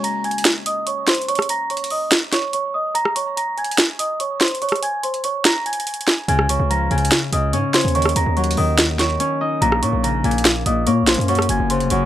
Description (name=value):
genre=hip hop, trap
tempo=144 BPM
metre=4/4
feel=half-time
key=unclear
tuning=A4 = 440 Hz
part: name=celesta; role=melody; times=0.0-12.1 s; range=C5 to Bb6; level=-22 LUFS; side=right 2 dB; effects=low-pass filter, tape echo
part: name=Celtic harp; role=accompaniment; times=0.0-2.3, 6.3-12.1 s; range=Gb2 to Db5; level=-22 LUFS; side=left 4 dB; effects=low-pass filter
part: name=trap drum kit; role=drums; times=0.0-12.0 s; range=hi-hat, rim click, snare drum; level=-19 LUFS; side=right 1 dB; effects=none
part: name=distorted 808-style bass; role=bass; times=6.3-12.1 s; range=F1 to Bb2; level=-21 LUFS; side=right 1 dB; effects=distortion
room=light reverb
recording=none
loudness=-16 LUFS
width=side -12 dB against mid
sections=0.0-12.1 A section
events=break 0.0-6.3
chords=0.0 Db5; 1.3 Eb5; 3.0 Bbm; 4.6 Bbm9/C; 6.3 Db; 8.0 Ebm7; 9.6 Bbm; 11.3 Gbsus2